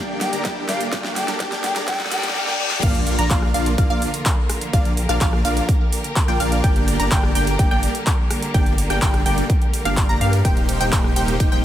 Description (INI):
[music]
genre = EDM, festival progressive house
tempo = 126 BPM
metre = 4/4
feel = straight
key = Bb major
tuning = A4 = 440 Hz
[part]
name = clear symphonic string section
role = sustained chords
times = 0.0-11.6 s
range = C3 to Bb4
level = -30 LUFS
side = equal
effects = sidechain pumping
[part]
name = dense compressed supersaw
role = riff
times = 0.0-11.6 s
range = Bb3 to Bb5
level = -25 LUFS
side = equal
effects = sidechain pumping, tape echo
[part]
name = saturated sub bass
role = bass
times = 0.0-11.6 s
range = Eb1 to G2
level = -23 LUFS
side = equal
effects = sidechain pumping
[part]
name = riser, reverse cymbal and impact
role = sound effects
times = 0.0-4.7 s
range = none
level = -28 LUFS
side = left 2 dB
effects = none
[part]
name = mellow hollow silver concert flute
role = melody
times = 0.2-2.3 s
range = F5 to G5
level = -28 LUFS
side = left 1 dB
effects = tape echo
[part]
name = big-room dance drum kit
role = drums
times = 0.2-11.5 s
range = crash cymbal, handclaps, hi-hat, ride cymbal, rim click, snare drum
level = -26 LUFS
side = equal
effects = none
[part]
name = electronic kick drum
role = drums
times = 0.4-11.5 s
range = none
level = -19 LUFS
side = equal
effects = none
[part]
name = wide unison pluck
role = arpeggios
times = 2.8-11.6 s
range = F5 to Bb5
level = -26 LUFS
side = equal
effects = sidechain pumping, tape echo
[sound]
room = light reverb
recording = high-pass filter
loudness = -17 LUFS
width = side -12 dB against mid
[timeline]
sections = 0.0-2.8 A section; 2.8-11.6 B section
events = build-up 0.0-2.8; drum fill 0.0-2.4, 2.4-2.8; riser 0.0-2.4; filter sweep 0.0-2.8; reverse cymbal 1.9-2.8; drop 2.8-11.6; impact 2.8-4.7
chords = 0.0 Gm; 2.8 Bb; 6.6 Gm; 10.4 Eb6